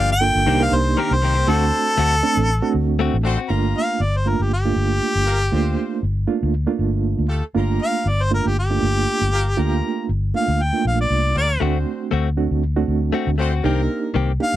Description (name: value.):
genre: blues.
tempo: 118 BPM.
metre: 4/4.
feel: swing 55% on 16ths.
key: G minor.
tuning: A4 = 440 Hz.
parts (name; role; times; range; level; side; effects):
warm harmonica; melody; 0.0-14.6 s; G4 to G5; -21 LUFS; left 1 dB; none.
direct-recorded clean electric guitar; stabs; 0.0-3.5, 11.6-14.3 s; Eb3 to G4; -23 LUFS; left 7 dB; none.
vintage muted fingered electric bass; bass; 0.0-14.6 s; G1 to D2; -20 LUFS; left 1 dB; none.
reed electric piano; accompaniment; 0.2-14.6 s; A3 to A4; -22 LUFS; right 6 dB; fast tremolo.
bright horn section; sustained chords; 0.5-14.1 s; A3 to Bb5; -30 LUFS; left 2 dB; none.
room: little or no reverb.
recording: dry, close 1970s-style studio recording.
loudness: -17 LUFS.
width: side -13 dB against mid.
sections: 0.0-3.5 A section; 3.5-14.6 B section.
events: harmonica solo 0.0-3.5.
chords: 0.5 Cm7; 1.5 D7; 3.5 Gm7; 11.6 D7; 13.6 Cm7.